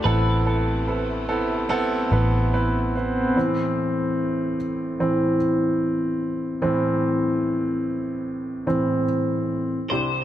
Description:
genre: pop ballad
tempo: 73 BPM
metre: 4/4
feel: straight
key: unclear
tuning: A4 = 440 Hz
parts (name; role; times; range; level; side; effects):
- twelve-string electric guitar; melody; 0.0-2.5, 9.9-10.2 s; A4 to C5; -29 LUFS; left 1 dB; wide subtle chorus
- clear grand piano; accompaniment; 0.0-10.2 s; C2 to C5; -22 LUFS; equal; none
- warm studio string section; sustained chords; 0.0-3.3 s; C3 to A3; -36 LUFS; equal; none
- vintage muted fingered electric bass; bass; 0.1-3.3 s; A1; -23 LUFS; equal; none
room: moderate lush hall reverb, RT60 1.8 s, small room ambience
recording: none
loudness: -21 LUFS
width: side -12 dB against mid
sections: 0.0-3.4 A section; 3.4-9.9 B section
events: grand piano solo 3.4-9.9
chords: 0.1 Amadd9; 3.4 Am

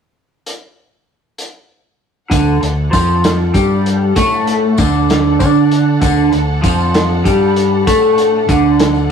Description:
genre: psychedelic rock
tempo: 65 BPM (dotted quarters)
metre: 6/8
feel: straight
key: D major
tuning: A4 = 438 Hz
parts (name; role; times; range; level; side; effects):
- vintage drum kit; drums; 0.5-8.9 s; hi-hat, kick drum, snare drum; -17 LUFS; equal; none
- warm symphonic string section; sustained chords; 2.3-9.1 s; D4 to F#5; -24 LUFS; right 2 dB; none
- electric guitar through a small old amp; riff; 2.3-9.1 s; D3 to D4; -13 LUFS; equal; phaser
- overdriven fingered electric bass; bass; 2.3-9.1 s; D2 to D3; -17 LUFS; left 1 dB; none
- tambourine; percussion; 2.3-9.0 s; none; -32 LUFS; left 6 dB; none
room: moderate stone room reverb, RT60 1.4 s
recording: rough rehearsal-room recording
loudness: -10 LUFS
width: side -6 dB against mid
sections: 0.5-2.3 A section; 2.3-9.1 B section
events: none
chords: 0.5 N.C.; 2.3 D

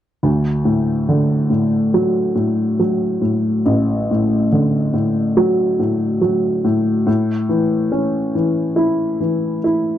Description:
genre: folk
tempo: 70 BPM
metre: 4/4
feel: straight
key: D major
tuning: A4 = 440 Hz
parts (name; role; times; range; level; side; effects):
- warm upright piano; accompaniment; 0.2-10.0 s; A1 to E4; -15 LUFS; equal; none
room: moderate studio reverb, RT60 0.6 s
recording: dry, close 1970s-style studio recording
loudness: -15 LUFS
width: side -11 dB against mid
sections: 0.2-10.0 A section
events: none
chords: 0.2 D; 7.1 A

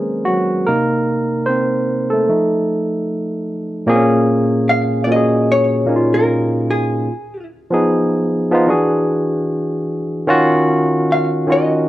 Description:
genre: R&B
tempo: 75 BPM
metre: 4/4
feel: swing 60% on 16ths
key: Bb minor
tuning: A4 = 438 Hz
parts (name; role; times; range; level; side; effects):
- barky tine electric piano; accompaniment; 0.0-11.9 s; Bb2 to C5; -14 LUFS; equal; overdrive
- vintage hollow-body jazz guitar; melody; 4.7-11.9 s; Ab4 to F5; -18 LUFS; left 1 dB; slapback echo
room: light reverb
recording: worn, warbling old tape, cassette tape, warbly pitch drift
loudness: -14 LUFS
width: side -15 dB against mid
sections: 0.0-3.9 A section; 3.9-11.9 B section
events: tine electric piano solo 0.0-3.9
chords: 0.0 Ebm7; 0.7 Cm7; 2.3 F7; 3.9 Bbm7; 7.1 Fm7b5; 8.7 E9; 10.3 Ebm9

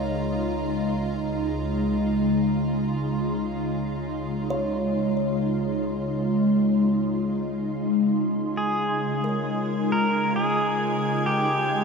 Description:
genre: ambient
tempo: free time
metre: none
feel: none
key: Db major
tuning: A4 = 440 Hz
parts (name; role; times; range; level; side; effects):
- ethereal airy pad; sustained chords; 0.0-11.8 s; Db3 to C6; -24 LUFS; equal; ensemble chorus, built-in reverb, phaser
- kalimba; arpeggios; 0.0-11.8 s; Bb4 to F5; -35 LUFS; left 2 dB; ping-pong delay
- warm symphonic double bass section; bass; 0.0-8.5 s; Db2; -38 LUFS; right 1 dB; none
- warm chamber violin section; texture; 0.0-11.8 s; Ab3 to Ab6; -39 LUFS; right 1 dB; none
- pedal steel guitar; melody; 8.6-11.8 s; G4 to Bb4; -24 LUFS; equal; ping-pong delay
room: wet huge ambient reverb, RT60 7.3 s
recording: in a vast, echoing space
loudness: -22 LUFS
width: side -5 dB against mid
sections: 0.0-8.6 A section; 8.6-11.8 B section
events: fade-out on double bass section 0.0-8.6; fade-out on violin section 0.0-8.6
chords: 0.0 Dbmaj7

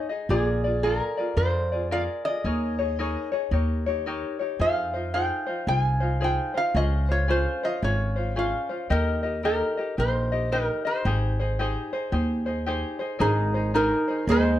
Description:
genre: Hawaiian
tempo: 112 BPM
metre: 4/4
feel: swing 63% on 8ths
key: Ab major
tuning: A4 = 441 Hz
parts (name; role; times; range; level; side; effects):
- tenor ukulele; accompaniment; 0.0-14.6 s; Db4 to Eb5; -29 LUFS; left 3 dB; none
- metal-body resonator slide guitar; melody; 0.3-14.6 s; Eb4 to Ab5; -26 LUFS; right 1 dB; none
- upright bass; bass; 0.3-14.6 s; Ab1 to F2; -26 LUFS; equal; none
- picked old ladder-braced acoustic guitar; second line; 13.2-14.6 s; Eb3 to Ab3; -30 LUFS; right 5 dB; none
room: light reverb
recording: dark, warm production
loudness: -23 LUFS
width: side -12 dB against mid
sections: 0.0-13.2 A section; 13.2-14.6 A section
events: none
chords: 0.3 Bb7; 2.4 Eb7sus4; 3.5 Eb7; 4.6 Fm7; 6.7 Dbmaj7; 8.9 Eb; 11.1 Abmaj7; 13.2 Abadd9

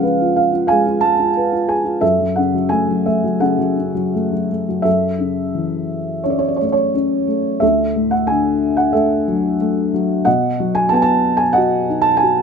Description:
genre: classical, lyrical solo piano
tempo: 81-93 BPM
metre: 4/4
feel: rubato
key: F# minor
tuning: A4 = 439 Hz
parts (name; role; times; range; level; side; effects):
- felt-muted upright piano; solo; 0.0-12.4 s; D2 to A5; -14 LUFS; equal; none
room: moderate studio reverb, RT60 0.5 s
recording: none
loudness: -14 LUFS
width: side -6 dB against mid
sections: 0.0-4.9 A section; 4.9-12.4 B section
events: none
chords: 0.0 C#7; 2.0 F#m; 4.9 F#m7; 7.6 Dadd9; 10.3 B

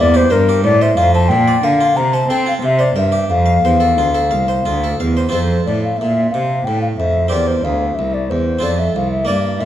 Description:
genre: classical, baroque-style sonata movement with continuo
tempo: 91 BPM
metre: 3/4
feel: straight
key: F major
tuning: A4 = 439 Hz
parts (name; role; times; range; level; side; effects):
- hollow baroque flute; melody; 0.0-9.7 s; Bb4 to Bb5; -16 LUFS; left 3 dB; none
- harpsichord; accompaniment; 0.0-9.7 s; C2 to F5; -21 LUFS; right 1 dB; none
- rich cello; bass; 0.0-9.7 s; C2 to C4; -17 LUFS; right 2 dB; none
room: wet recital hall reverb, RT60 1.4 s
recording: dark, warm production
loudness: -13 LUFS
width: side -11 dB against mid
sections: 0.0-5.3 A section; 5.3-9.7 B section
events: none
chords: 0.0 C7; 0.7 F/A; 1.3 Gm7/Bb; 2.0 F/C; 2.6 C7; 3.3 F; 7.3 C7; 8.6 F

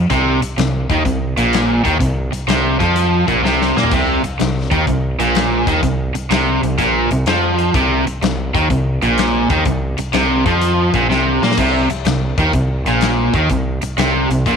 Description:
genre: blues rock power trio and southern rock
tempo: 125 BPM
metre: 4/4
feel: swing 67% on 8ths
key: unclear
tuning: A4 = 442 Hz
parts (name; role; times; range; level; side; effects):
- crunchy overdriven guitar; riff; 0.0-14.6 s; Bb2 to Bb3; -15 LUFS; right 1 dB; none
- gritty driven synth bass; bass; 0.0-14.6 s; Bb1 to Bb2; -20 LUFS; right 1 dB; none
- big rock drum kit; drums; 0.1-14.6 s; crash cymbal, hi-hat, kick drum, snare drum, splash cymbal, toms; -22 LUFS; left 4 dB; none
room: light reverb, small room ambience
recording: 1960s-style stereo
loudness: -14 LUFS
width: side -6 dB against mid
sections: 0.0-14.6 A section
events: drum fill 3.4-3.9, 11.1-11.6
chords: 0.0 Bbsus24

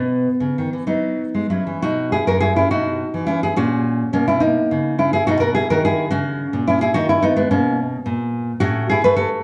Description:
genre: classical, baroque-style dance for nylon-string guitar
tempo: 70 BPM (dotted quarters)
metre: 6/8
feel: uneven beats, rubato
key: B major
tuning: A4 = 445 Hz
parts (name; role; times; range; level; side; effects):
- nylon-string guitar; solo; 0.0-9.4 s; F#2 to B4; -19 LUFS; equal; none
room: wet recital hall reverb, RT60 1.3 s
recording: worn, warbling old tape, cassette tape, warbly pitch drift, nothing above 10.7 kHz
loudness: -19 LUFS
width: mono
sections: 0.0-1.8 A section; 1.8-9.4 B section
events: none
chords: 0.0 B; 2.7 C#m7/B; 3.5 F#/A#; 5.3 B; 6.1 F#7/C#; 7.0 B; 8.6 F#m/A

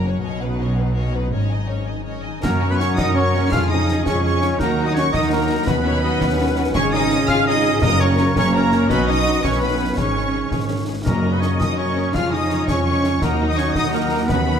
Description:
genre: cinematic, heroic adventure film score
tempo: 111 BPM (dotted quarters)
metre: 12/8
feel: straight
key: F# major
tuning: A4 = 440 Hz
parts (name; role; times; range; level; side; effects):
- warm symphonic violin section; melody; 0.0-14.6 s; D#5 to E#6; -27 LUFS; equal; none
- rich studio violin section; second line; 0.0-14.5 s; C#4 to D#5; -31 LUFS; left 3 dB; none
- rich symphonic viola section; accompaniment; 0.0-14.6 s; C#4 to D#5; -28 LUFS; left 2 dB; none
- concert harp; arpeggios; 0.0-14.6 s; E#2 to D#5; -29 LUFS; left 9 dB; none
- rich symphonic double bass section; bass; 0.0-14.6 s; F#1 to F#2; -24 LUFS; right 2 dB; none
- warm symphonic cello section; bass; 0.0-14.6 s; F#2 to E#4; -24 LUFS; right 1 dB; none
- bright clarinet; second line; 2.4-14.6 s; C#4 to D#4; -31 LUFS; left 1 dB; none
- small flute group; second line; 2.4-14.6 s; F#5 to C#6; -30 LUFS; left 1 dB; none
- warm oboe; second line; 2.4-14.6 s; A#4 to E#5; -30 LUFS; right 1 dB; none
- dark French horn section; sustained chords; 2.4-14.6 s; A#3 to G#4; -30 LUFS; left 2 dB; none
- mellow trombone section; sustained chords; 2.4-14.6 s; B2 to B3; -29 LUFS; right 3 dB; none
- dark trumpet section; stabs; 2.4-14.6 s; A#4 to E#5; -26 LUFS; equal; none
- concert snare drum, clash cymbals and concert bass drum; drums; 2.4-14.5 s; none; -27 LUFS; equal; none
- timpani; percussion; 7.8-11.6 s; F#2; -24 LUFS; left 1 dB; none
room: moderate scoring stage reverb, RT60 1.8 s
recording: none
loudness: -16 LUFS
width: side -8 dB against mid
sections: 0.0-2.4 A section; 2.4-14.6 B section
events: none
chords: 0.2 Badd9; 1.3 G#sus4; 2.4 F#; 3.5 C#/E#; 4.6 D#m; 5.7 Badd9/D#; 6.7 G#sus4; 7.8 F#; 8.9 Badd9; 10.0 G#sus4; 11.1 F#; 12.1 C#/E#; 13.2 D#m

